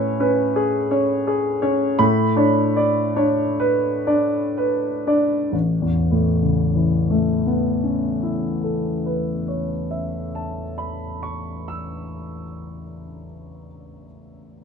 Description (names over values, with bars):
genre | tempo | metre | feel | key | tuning
classical, impressionist solo piano | 29-42 BPM | 4/4 | rubato | A major | A4 = 440 Hz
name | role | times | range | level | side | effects
clear concert grand piano | solo | 0.0-14.6 s | A1 to E6 | -19 LUFS | equal | none
room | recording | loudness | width
moderate small room reverb, RT60 0.5 s | dark, warm production | -18 LUFS | side -6 dB against mid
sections
0.0-5.5 A section; 5.5-12.6 B section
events
slowing down 0.0-5.5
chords
0.0 Amaj9; 2.0 Bm9/A; 5.5 Aadd9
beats
0.55 1.99 3.60 | 5.52 7.28 9.09 10.86